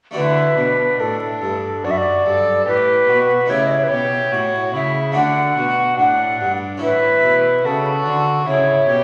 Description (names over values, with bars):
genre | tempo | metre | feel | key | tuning
classical, baroque-style sonata movement with continuo | 72 BPM | 4/4 | straight | D major | A4 = 440 Hz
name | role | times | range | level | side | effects
harpsichord | accompaniment | 0.1-9.0 s | F#2 to G4 | -30 LUFS | equal | none
mellow wooden flute | melody | 0.2-9.0 s | A4 to F#5 | -19 LUFS | equal | none
warm violin | second line | 0.2-9.0 s | D4 to A4 | -24 LUFS | equal | none
rich cello | bass | 0.2-9.0 s | F#2 to D3 | -28 LUFS | equal | none
room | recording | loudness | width
wet recital hall reverb, RT60 1.5 s | vinyl crackle | -17 LUFS | mono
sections
0.2-9.0 A section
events
none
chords
0.2 D; 3.5 A7; 5.2 D; 6.8 A